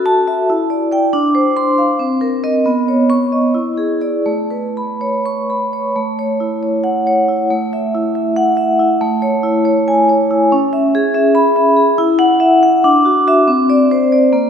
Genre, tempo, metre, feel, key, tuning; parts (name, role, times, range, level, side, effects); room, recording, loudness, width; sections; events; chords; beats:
classical, contemporary piece for solo vibraphone; 278 BPM (eighths); 7/8; rubato; A4 = 440 Hz
vibraphone with medium mallets; solo; 0.0-14.5 s; A3 to C#6; -12 LUFS; equal
wet concert hall reverb, RT60 2.4 s; heard from further back in the room; -12 LUFS; side -7 dB against mid
0.0-6.0 A section; 6.0-14.5 A section
0.5 Em7; 1.1 Dm7; 2.0 Cm7; 2.7 Badd9; 3.5 E7; 4.3 Aadd9; 6.0 A6; 7.5 F#m7/A; 9.0 Amaj7; 10.5 C#m7; 12.0 Esus2; 12.8 Dadd9; 13.5 Csus2
0.07 0.28 0.49 0.71 0.93 | 1.14 1.36 1.57 1.79 2.01 2.22 2.44 | 2.66 2.88 3.10 3.32 3.55 3.78 4.01 | 4.26 4.51 4.76 5.01 5.25 5.50 5.74 | 5.96 6.18 6.40 6.62 6.84 7.06 7.28 | 7.50 7.71 7.93 8.14 8.35 8.57 8.78 | 9.00 9.22 9.43 9.65 9.87 10.09 10.30 | 10.51 10.72 10.93 11.14 11.35 11.56 11.77 | 11.98 12.20 12.41 12.62 12.84 13.05 13.27 | 13.48 13.70 13.91 14.12 14.34